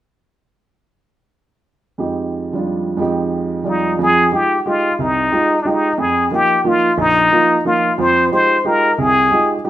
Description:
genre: jazz.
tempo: 180 BPM.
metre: 3/4.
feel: swing 64% on 8ths.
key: F dorian.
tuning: A4 = 440 Hz.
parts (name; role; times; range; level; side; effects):
warm upright piano; accompaniment; 2.0-9.7 s; Bb1 to D5; -18 LUFS; right 3 dB; none.
trumpet with plunger mute; melody; 3.7-9.7 s; D4 to C5; -14 LUFS; left 2 dB; none.
room: moderate large studio reverb, RT60 0.8 s.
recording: minimal, uncompressed stereo recording.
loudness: -13 LUFS.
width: side -13 dB against mid.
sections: 2.0-4.0 A section; 4.0-9.7 B section.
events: none.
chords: 2.0 Fm9; 6.0 Ebsus2/F; 8.0 Fm9.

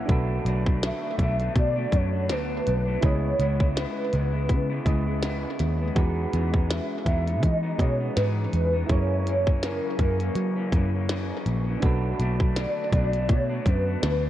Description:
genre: indie pop, bedroom pop.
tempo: 82 BPM.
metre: 4/4.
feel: swing 55% on 16ths.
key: unclear.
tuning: A4 = 443 Hz.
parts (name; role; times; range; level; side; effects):
electric guitar through a small old amp; accompaniment; 0.0-14.3 s; F#2 to E4; -34 LUFS; left 4 dB; wide subtle chorus, vibrato effect, analog delay.
soft electric-piano-like synth keys; accompaniment; 0.0-14.3 s; D4 to A#5; -35 LUFS; right 6 dB; chorus, cassette tape, analog delay.
warbly tape-like pad; sustained chords; 0.0-14.3 s; C#3 to F#4; -36 LUFS; equal; chorus, built-in reverb, phaser.
vintage muted picked electric bass; bass; 0.1-14.3 s; A#1 to F#3; -26 LUFS; equal; none.
minimal click drum kit; drums; 0.1-14.2 s; hi-hat, kick drum, snare drum; -25 LUFS; equal; none.
hollow clarinet-like synth lead; melody; 0.8-14.3 s; A#4 to E5; -29 LUFS; equal; ensemble chorus, analog delay.
room: digital ambience.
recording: echo-heavy mix, cassette tape.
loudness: -22 LUFS.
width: side -13 dB against mid.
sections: 0.0-14.3 A section.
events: none.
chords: 0.1 Bm7; 3.0 C#m7; 6.0 Emaj7; 8.9 F#7; 11.8 Bm7.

